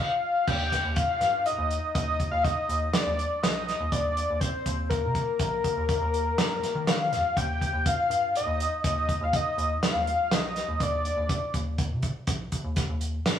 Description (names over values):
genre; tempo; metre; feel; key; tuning
progressive instrumental, band music in an uneven meter; 122 BPM; 7/4; straight; Eb major; A4 = 440 Hz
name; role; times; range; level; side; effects
fat analog lead; melody; 0.0-11.5 s; Bb4 to G5; -26 LUFS; left 2 dB; none
rubbery square bass; bass; 0.5-13.4 s; Bb1 to Eb3; -32 LUFS; equal; none
warm soul drum kit; drums; 0.5-13.4 s; crash cymbal, hi-hat, kick drum, snare drum; -29 LUFS; right 1 dB; none
room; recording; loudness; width
moderate stone room reverb, RT60 1.3 s; rough rehearsal-room recording, small room ambience; -24 LUFS; side -9 dB against mid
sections
0.5-13.4 A section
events
stop 0.0-0.5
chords
0.5 Ebmaj7